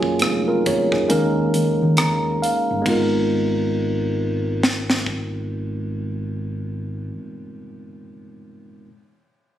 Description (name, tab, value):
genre	R&B, neo-soul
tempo	68 BPM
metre	4/4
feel	swing 60% on 16ths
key	G# dorian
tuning	A4 = 440 Hz
part	tine electric piano	accompaniment	0.0-8.9 s	F#3 to A#5	-21 LUFS	right 1 dB	none
part	fingered electric bass	bass	0.0-7.1 s	E#1 to D#3	-25 LUFS	equal	none
part	tight funk drum kit	drums	0.0-5.3 s	hi-hat, kick drum, ride cymbal, rim click, snare drum	-23 LUFS	equal	none
room	light reverb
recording	recorded on a phone in the room, studio reverb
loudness	-19 LUFS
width	side -11 dB against mid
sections	0.0-2.9 A section; 2.9-6.4 B section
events	kick muted 1.1-2.9; tine electric piano fill 1.5-2.9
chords	0.0 F#maj9; 1.1 D#7sus4; 2.9 G#m69